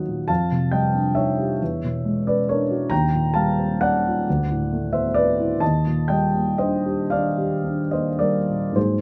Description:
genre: classical, impressionist solo piano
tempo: 33-47 BPM (dotted quarters)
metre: 6/8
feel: rubato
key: unclear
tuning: A4 = 440 Hz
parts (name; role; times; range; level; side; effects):
- warm grand piano; solo; 0.0-9.0 s; D2 to Bb5; -22 LUFS; equal; none
room: light reverb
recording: close, detailed microphones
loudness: -22 LUFS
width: mono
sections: 0.0-9.0 A section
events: none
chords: 0.3 Fsus2; 1.6 E13; 2.9 Eb13; 4.3 D13; 5.6 Ebmaj7

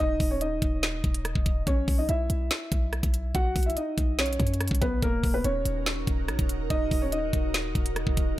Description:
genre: hip hop, trap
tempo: 143 BPM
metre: 4/4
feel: half-time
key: Eb phrygian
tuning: A4 = 440 Hz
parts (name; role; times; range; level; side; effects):
- dark grand piano; melody; 0.0-8.3 s; Bb3 to F#5; -30 LUFS; equal; tape echo
- warm 808-style bass; bass; 0.0-8.4 s; Eb1 to F#2; -30 LUFS; equal; none
- trap drum kit; drums; 0.2-8.3 s; finger snaps, hi-hat, kick drum, rim click, snare drum; -27 LUFS; equal; none
- ethereal airy pad; sustained chords; 5.5-8.3 s; Eb4 to Bb4; -36 LUFS; right 3 dB; ensemble chorus, built-in reverb
room: digital ambience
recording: none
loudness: -24 LUFS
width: side -15 dB against mid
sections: 0.0-8.4 A section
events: none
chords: 0.0 Eb5; 1.7 B; 5.0 Ebm

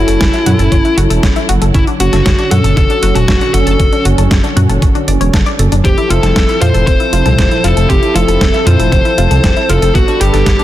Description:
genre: synthwave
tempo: 117 BPM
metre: 4/4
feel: straight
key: D major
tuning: A4 = 441 Hz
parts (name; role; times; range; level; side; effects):
- fuzz lead guitar; melody; 0.0-10.6 s; E4 to C5; -15 LUFS; left 2 dB; distortion, ping-pong delay
- brassy analog pad; sustained chords; 0.0-10.6 s; D3 to B4; -18 LUFS; right 2 dB; chorus, sidechain pumping
- analog pluck; arpeggios; 0.0-10.6 s; B3 to D5; -20 LUFS; left 4 dB; chorus, ping-pong delay
- dark detuned saw bass; bass; 0.0-10.6 s; E1 to F#2; -12 LUFS; equal; sidechain pumping
- detuned 8-bit digital drum machine; drums; 0.1-10.6 s; hi-hat, snare drum, toms; -18 LUFS; equal; none
- electronic kick drum; drums; 0.2-10.6 s; none; -13 LUFS; equal; overdrive
room: light reverb, digital ambience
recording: dense, heavily limited modern master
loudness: -8 LUFS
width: side -13 dB against mid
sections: 0.0-10.6 A section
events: none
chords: 0.0 F#m7; 1.7 Dmaj7; 5.8 Fmaj7; 9.9 Gadd9

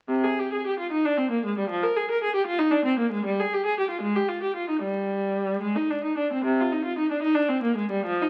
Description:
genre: classical, baroque-style suite movement for unaccompanied viola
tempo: 75 BPM (dotted quarters)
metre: 6/8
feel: uneven beats, rubato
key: C minor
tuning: A4 = 440 Hz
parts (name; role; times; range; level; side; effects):
- rich viola; solo; 0.1-8.3 s; C3 to Bb4; -25 LUFS; equal; none
room: wet stone room reverb, RT60 1.1 s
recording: very old 78 rpm record, vinyl crackle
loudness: -26 LUFS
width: mono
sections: 0.1-8.3 A section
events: none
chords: none

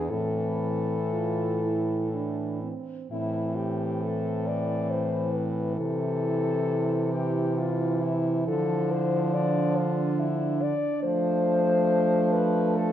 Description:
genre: classical, lyrical piece for horn quartet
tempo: 58-72 BPM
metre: 3/4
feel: rubato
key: A minor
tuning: A4 = 439 Hz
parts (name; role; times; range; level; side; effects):
- clear French horn; melody; 0.0-12.9 s; E4 to D5; -29 LUFS; left 6 dB; none
- mellow French horn; second line; 0.0-12.9 s; C4 to F4; -32 LUFS; right 8 dB; none
- clear French horn; bass; 0.0-12.9 s; E2 to F3; -30 LUFS; right 2 dB; none
- warm French horn; accompaniment; 0.1-12.9 s; E3 to A3; -30 LUFS; left 1 dB; none
room: moderate recital hall reverb, RT60 1.5 s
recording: nothing above 7.5 kHz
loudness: -24 LUFS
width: side -10 dB against mid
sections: 0.0-3.1 A section; 3.1-12.9 B section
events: none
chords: 0.1 Am; 5.8 Am/C; 8.5 Dm; 11.0 Dm/F

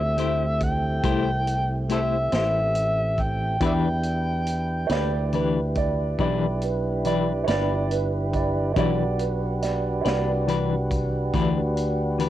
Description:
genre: slow blues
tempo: 47 BPM (dotted quarters)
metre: 12/8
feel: straight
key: E minor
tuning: A4 = 438 Hz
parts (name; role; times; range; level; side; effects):
- overdriven harmonica; melody; 0.0-5.3 s; A4 to G5; -26 LUFS; equal; cassette tape
- tonewheel organ; sustained chords; 0.0-12.3 s; A3 to B4; -29 LUFS; right 1 dB; overdrive, slow rotary speaker, cassette tape
- fingered electric bass; bass; 0.0-12.3 s; G1 to E2; -26 LUFS; equal; none
- semi-hollow electric guitar; accompaniment; 0.2-12.3 s; E3 to C5; -25 LUFS; left 6 dB; tremolo, cassette tape
- vintage drum kit; drums; 0.2-12.3 s; hi-hat, kick drum, snare drum; -31 LUFS; equal; cassette tape
- dark upright piano; second line; 4.9-10.5 s; B4 to D5; -28 LUFS; right 10 dB; cassette tape
room: little or no reverb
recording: home recording on cassette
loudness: -21 LUFS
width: side -13 dB against mid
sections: 0.0-12.3 A section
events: none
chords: 0.0 Am7; 3.6 Em7

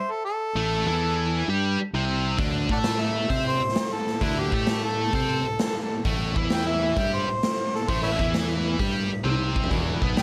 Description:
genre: blues rock power trio and southern rock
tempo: 131 BPM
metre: 4/4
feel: swing 68% on 8ths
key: unclear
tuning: A4 = 440 Hz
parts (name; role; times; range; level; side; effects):
- warm harmonica; melody; 0.0-10.2 s; E4 to A5; -30 LUFS; equal; overdrive, plate reverb
- tight distorted guitar; riff; 0.6-10.2 s; E2 to C5; -30 LUFS; equal; distortion
- fuzz fingered electric bass; bass; 0.6-10.2 s; E1 to C3; -30 LUFS; equal; overdrive
- raw garage drum kit; drums; 2.4-10.2 s; hi-hat, kick drum, snare drum, toms; -29 LUFS; equal; none
- bright tonewheel organ; sustained chords; 9.7-10.2 s; F#4 to E5; -38 LUFS; equal; slow rotary speaker, overdrive, chorus vibrato, plate reverb
room: light reverb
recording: none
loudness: -25 LUFS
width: mono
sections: 0.0-10.2 A section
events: drum fill 9.3-9.7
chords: 0.0 A5; 2.4 D5; 6.0 A5; 9.7 E7

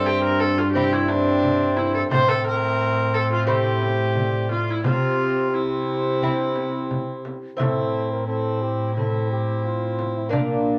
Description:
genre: classical, renaissance-style consort dance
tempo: 88 BPM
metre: 4/4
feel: straight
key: unclear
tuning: A4 = 440 Hz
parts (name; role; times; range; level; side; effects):
- dark cornet; melody; 0.0-10.8 s; D4 to E5; -36 LUFS; equal; none
- rich viola; second line; 0.0-10.8 s; D4 to C5; -28 LUFS; equal; none
- brilliant trombone; accompaniment; 0.0-10.8 s; Bb3 to C4; -28 LUFS; equal; none
- lute; accompaniment; 0.0-10.8 s; G2 to E5; -30 LUFS; equal; none
- dark cello; bass; 0.0-10.8 s; G2 to C3; -28 LUFS; equal; none
- frame drum; percussion; 0.8-10.6 s; none; -30 LUFS; equal; none
room: wet studio reverb, RT60 0.5 s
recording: none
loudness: -22 LUFS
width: mono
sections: 0.0-7.6 A section; 7.6-10.8 B section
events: none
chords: 0.0 C/G; 2.1 Am; 4.8 C; 7.6 Am

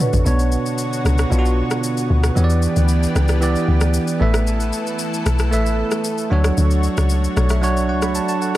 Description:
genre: afrobeats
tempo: 114 BPM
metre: 4/4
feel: straight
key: unclear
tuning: A4 = 440 Hz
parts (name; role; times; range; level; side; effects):
- bell-like tine electric piano; accompaniment; 0.0-8.6 s; B2 to C#6; -21 LUFS; right 3 dB; none
- lush unison pad; sustained chords; 0.0-8.6 s; D3 to C#5; -26 LUFS; left 1 dB; chorus
- deep house drum kit; drums; 0.0-8.6 s; rim click, shaker, toms; -26 LUFS; equal; overdrive
- deep log drum bass; bass; 0.1-8.2 s; A1 to E2; -17 LUFS; equal; none
room: little or no reverb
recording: none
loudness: -16 LUFS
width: side -15 dB against mid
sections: 0.3-8.6 A section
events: drum fill 0.0; kick muted 0.3-8.6; tine electric piano fill 7.1-8.6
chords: 0.3 Bmadd9; 2.4 Em7; 4.2 Asus2; 6.3 Dmaj7

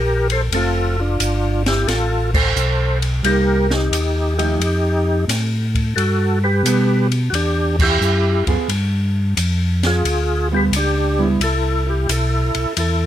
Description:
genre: soul jazz organ trio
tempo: 88 BPM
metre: 4/4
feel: swing 67% on 8ths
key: unclear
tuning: A4 = 445 Hz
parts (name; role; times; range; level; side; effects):
- percussive tonewheel organ; melody; 0.0-13.1 s; D4 to C5; -20 LUFS; equal; overdrive, chorus vibrato, slow rotary speaker, plate reverb
- mellow tonewheel organ; bass; 0.0-13.1 s; F1 to B2; -19 LUFS; equal; chorus vibrato, slow rotary speaker
- open jazz drum kit; drums; 0.3-13.0 s; crash cymbal, hi-hat, kick drum, ride cymbal, snare drum; -23 LUFS; equal; none
- hollow-body jazz guitar; accompaniment; 0.5-11.4 s; F3 to A4; -20 LUFS; right 3 dB; none
room: light reverb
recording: none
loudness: -16 LUFS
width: side -11 dB against mid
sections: 0.0-13.1 A section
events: band accent 2.2-2.6, 7.7-8.0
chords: 0.0 C7(no3); 0.5 F; 3.2 Cm7; 4.6 F9; 6.0 Gmaj9; 8.7 G7b9; 11.4 Cmaj7

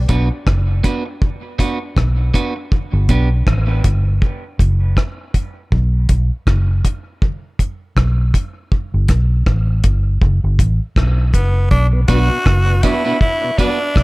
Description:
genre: dub reggae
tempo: 80 BPM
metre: 4/4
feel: swing 58% on 16ths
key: B minor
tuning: A4 = 435 Hz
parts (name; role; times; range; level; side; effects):
- vintage muted fingered electric bass; bass; 0.0-14.0 s; F#1 to B1; -14 LUFS; equal; none
- electric guitar at the edge of break-up; accompaniment; 0.1-3.3, 12.1-13.8 s; B3 to B4; -23 LUFS; right 4 dB; dub echo
- deep reggae drum kit; drums; 0.1-14.0 s; hi-hat, kick drum, rim click; -16 LUFS; equal; none
- raspy tenor saxophone; melody; 11.3-14.0 s; B3 to F#4; -19 LUFS; equal; dub echo
- tonewheel organ; accompaniment; 11.9-13.7 s; B2 to D4; -27 LUFS; left 1 dB; slow rotary speaker, dub echo
room: little or no reverb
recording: dark, warm production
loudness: -14 LUFS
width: side -22 dB against mid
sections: 0.0-11.7 A section; 11.7-14.0 B section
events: none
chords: 0.0 Bm; 2.7 G; 5.7 B5; 8.7 G; 11.7 Bm

